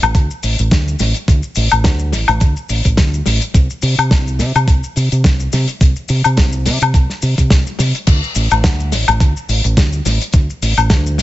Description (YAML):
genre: nu-disco, nu disco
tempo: 106 BPM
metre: 4/4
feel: swing 55% on 16ths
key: unclear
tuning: A4 = 440 Hz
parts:
  - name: fingered electric bass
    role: bass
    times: 0.0-11.2 s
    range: A1 to C3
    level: -16 LUFS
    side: equal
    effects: sidechain pumping
  - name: damped 70s drum kit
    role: drums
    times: 0.0-11.2 s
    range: crash cymbal, hi-hat, shaker, snare drum, woodblock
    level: -17 LUFS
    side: left 3 dB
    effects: studio reverb, tape echo
  - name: electronic kick drum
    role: drums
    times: 0.1-11.0 s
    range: none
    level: -12 LUFS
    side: equal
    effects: studio reverb
room: little or no reverb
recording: echo-heavy mix, nothing above 7.8 kHz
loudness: -12 LUFS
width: side -15 dB against mid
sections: 0.0-11.2 A section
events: none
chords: none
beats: 0.15 0.71 | 1.28 1.85 2.41 2.98 | 3.55 4.11 4.68 5.24 | 5.81 6.38 6.94 7.51 | 8.07 8.64 9.21 9.77 | 10.34 10.90